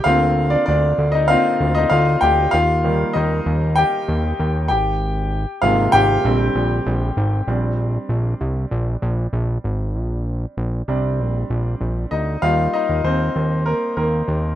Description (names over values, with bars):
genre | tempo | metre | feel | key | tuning
piano-driven pop | 97 BPM | 4/4 | straight | unclear | A4 = 441 Hz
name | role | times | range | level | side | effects
bright grand piano | accompaniment | 0.0-14.6 s | C3 to G5 | -18 LUFS | left 1 dB | none
fat analog bass | bass | 0.1-14.6 s | Ab1 to Eb2 | -20 LUFS | equal | none
room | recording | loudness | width
light reverb | rough home demo mix | -17 LUFS | side -12 dB against mid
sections
0.0-7.5 A section; 7.5-12.4 B section; 12.4-14.6 C section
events
grand piano solo 0.0-7.5, 7.5-12.4, 12.4-14.6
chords
0.1 Bbadd9/D; 2.5 Eb; 4.7 Abadd9; 6.2 Bb6; 12.4 Eb